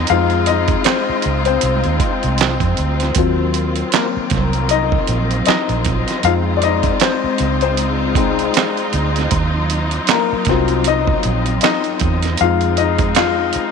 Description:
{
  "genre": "R&B, neo-soul",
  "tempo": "78 BPM",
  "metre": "4/4",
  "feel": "swing 58% on 16ths",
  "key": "unclear",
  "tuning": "A4 = 440 Hz",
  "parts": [
    { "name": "clear upright piano", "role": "accompaniment", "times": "0.0-13.7 s", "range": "Gb3 to F5", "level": "-18 LUFS", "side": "left 11 dB", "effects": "none" },
    { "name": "warm studio string section", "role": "sustained chords", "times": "0.0-13.7 s", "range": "Eb3 to F4", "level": "-22 LUFS", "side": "equal", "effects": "none" },
    { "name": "vintage muted fingered electric bass", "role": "bass", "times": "0.0-13.6 s", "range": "Bb1 to F2", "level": "-20 LUFS", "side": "right 2 dB", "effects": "none" },
    { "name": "dusty soul sampler-style drum kit", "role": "drums", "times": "0.1-13.7 s", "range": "handclaps, hi-hat, kick drum, snare drum", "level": "-19 LUFS", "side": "right 7 dB", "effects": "none" }
  ],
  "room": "light reverb, digital ambience",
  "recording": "1960s-style stereo with parts hard left and right",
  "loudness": "-14 LUFS",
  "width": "side -6 dB against mid",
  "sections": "0.0-13.7 A section",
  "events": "upright piano solo 0.0-13.7",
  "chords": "0.1 Fm7; 3.2 Ebm69; 6.2 Fm7; 9.3 Ebm69; 12.4 Fm7"
}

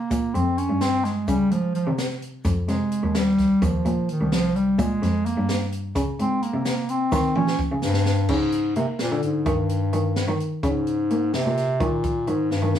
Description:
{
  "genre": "progressive instrumental, band music in an uneven meter",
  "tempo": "256 BPM (eighths)",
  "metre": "5/8",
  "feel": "straight",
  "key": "Eb mixolydian",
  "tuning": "A4 = 440 Hz",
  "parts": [
    { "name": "mellow bass clarinet", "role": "melody", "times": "0.0-12.8 s", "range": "G2 to Db4", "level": "-22 LUFS", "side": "equal", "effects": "none" },
    { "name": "muted cello", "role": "bass", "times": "0.0-12.8 s", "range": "C2 to Bb3", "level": "-26 LUFS", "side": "equal", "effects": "none" },
    { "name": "open jazz drum kit", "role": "drums", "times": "0.1-12.8 s", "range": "crash cymbal, hi-hat, kick drum, snare drum, toms", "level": "-28 LUFS", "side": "right 1 dB", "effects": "none" },
    { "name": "egg shaker", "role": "percussion", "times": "0.1-8.2 s", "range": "none", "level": "-46 LUFS", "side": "left 2 dB", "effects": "none" }
  ],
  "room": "wet studio reverb, RT60 0.5 s",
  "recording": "heard from further back in the room, studio ambience",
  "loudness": "-20 LUFS",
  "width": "side -10 dB against mid",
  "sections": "0.0-8.3 A section; 8.3-12.8 B section",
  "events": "bass clarinet solo 0.0-8.3; drum fill 7.1-8.3, 12.5",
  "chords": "0.1 Bb5; 1.3 N.C.; 2.5 Fm (rootless); 3.6 Ebsus2; 4.8 Bb5; 6.0 N.C.; 7.1 Eb7 (rootless); 8.3 Db5; 9.5 Eb; 10.6 Db5; 11.8 Eb5"
}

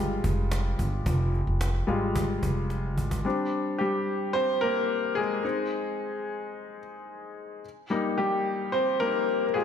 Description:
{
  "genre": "piano-driven pop",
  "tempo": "110 BPM",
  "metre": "4/4",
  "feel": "straight",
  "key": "Eb major",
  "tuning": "A4 = 441 Hz",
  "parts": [
    { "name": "bright upright piano", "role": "accompaniment", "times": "0.0-9.6 s", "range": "G3 to C5", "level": "-27 LUFS", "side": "left 2 dB", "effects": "none" },
    { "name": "upright bass", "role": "bass", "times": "0.0-3.2 s", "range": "F1 to Ab1", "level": "-27 LUFS", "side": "equal", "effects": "none" },
    { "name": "cajon", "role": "drums", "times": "0.2-3.2 s", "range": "none", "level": "-33 LUFS", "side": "right 1 dB", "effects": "none" }
  ],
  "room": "moderate lush hall reverb, RT60 1.6 s, small room ambience",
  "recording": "dreamy mix soaked in reverb",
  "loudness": "-25 LUFS",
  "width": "side -8 dB against mid",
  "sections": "0.0-3.2 A section; 3.2-9.6 B section",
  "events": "upright piano solo 0.0-3.2, 3.2-9.6; drum fill 2.7-3.2",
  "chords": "0.0 Fmadd9; 3.2 Bb6; 5.4 Ab; 7.6 Eb/G"
}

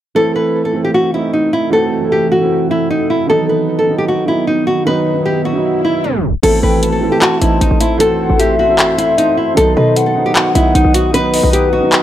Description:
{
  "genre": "hip hop, trap",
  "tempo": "153 BPM",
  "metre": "4/4",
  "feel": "half-time",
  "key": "unclear",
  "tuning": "A4 = 442 Hz",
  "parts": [
    { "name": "dark grand piano", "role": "accompaniment", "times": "0.1-12.0 s", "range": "D#3 to F#4", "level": "-18 LUFS", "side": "right 4 dB", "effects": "none" },
    { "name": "nylon-string guitar", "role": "melody", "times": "0.2-12.0 s", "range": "D#4 to B4", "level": "-14 LUFS", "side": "equal", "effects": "none" },
    { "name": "deep dark ambient pad", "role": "sustained chords", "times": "1.3-12.0 s", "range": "D#3 to D#6", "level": "-22 LUFS", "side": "left 1 dB", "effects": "chorus, built-in reverb" },
    { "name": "swell", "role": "sound effects", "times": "5.2-6.4 s", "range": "none", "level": "-27 LUFS", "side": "left 2 dB", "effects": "none" },
    { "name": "short 808-style bass", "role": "bass", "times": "6.4-11.8 s", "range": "A1 to B2", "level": "-16 LUFS", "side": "equal", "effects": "none" },
    { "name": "booming analog drum machine", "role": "drums", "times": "6.4-12.0 s", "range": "crash cymbal, handclaps, hi-hat", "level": "-16 LUFS", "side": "left 1 dB", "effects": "none" },
    { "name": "hollow clarinet-like synth lead", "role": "second line", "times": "6.6-12.0 s", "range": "B4 to A5", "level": "-17 LUFS", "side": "left 3 dB", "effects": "chorus, tape echo" }
  ],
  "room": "light reverb, digital ambience",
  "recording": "tape stop",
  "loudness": "-11 LUFS",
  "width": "side -12 dB against mid",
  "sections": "0.2-6.4 A section; 6.4-12.0 B section",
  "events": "swell 5.2-6.4; tape stop 6.0-6.4",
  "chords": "0.2 Am; 3.3 B; 6.4 Am; 9.6 B"
}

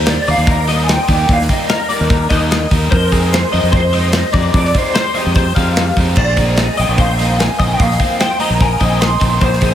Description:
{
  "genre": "math rock and midwest emo",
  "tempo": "148 BPM",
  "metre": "4/4",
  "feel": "straight",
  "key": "Eb major",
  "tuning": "A4 = 440 Hz",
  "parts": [
    { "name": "electric guitar through a small old amp", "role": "melody", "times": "0.0-9.7 s", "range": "G4 to C6", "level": "-19 LUFS", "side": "right 1 dB", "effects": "ensemble chorus, analog delay" },
    { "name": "twelve-string electric guitar", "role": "arpeggios", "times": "0.0-9.7 s", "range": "G4 to F5", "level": "-20 LUFS", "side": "left 4 dB", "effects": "ensemble chorus, analog delay" },
    { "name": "overdriven electric guitar", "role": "riff", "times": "0.0-9.7 s", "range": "Eb3 to Eb4", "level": "-22 LUFS", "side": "right 1 dB", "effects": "spring reverb" },
    { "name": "growling fingered electric bass", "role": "bass", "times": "0.0-9.7 s", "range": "Bb1 to F2", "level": "-16 LUFS", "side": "equal", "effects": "overdrive" },
    { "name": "modern studio drum kit", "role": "drums", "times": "0.1-9.7 s", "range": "crash cymbal, hi-hat, kick drum, snare drum", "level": "-16 LUFS", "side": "equal", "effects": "none" }
  ],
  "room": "moderate church reverb, RT60 3.7 s",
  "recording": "dreamy mix soaked in reverb",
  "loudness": "-11 LUFS",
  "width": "side -10 dB against mid",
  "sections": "0.0-9.7 A section",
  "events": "none",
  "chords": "0.0 Ebmaj7; 2.9 Fm7; 6.2 Bb9sus4"
}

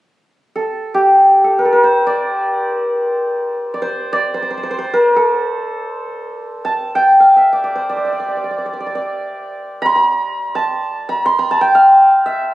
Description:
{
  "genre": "persian",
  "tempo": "free time",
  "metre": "none",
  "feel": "none",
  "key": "unclear",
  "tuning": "A4 = 440 Hz",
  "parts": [
    { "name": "santur", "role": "melody", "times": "0.6-12.5 s", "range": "G4 to C6", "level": "-13 LUFS", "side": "equal", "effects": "none" }
  ],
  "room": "moderate recital hall reverb, RT60 1.6 s",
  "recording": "recorded on a phone in the room, studio ambience",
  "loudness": "-12 LUFS",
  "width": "side -16 dB against mid",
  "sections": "0.2-12.5 A section",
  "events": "none",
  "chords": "none"
}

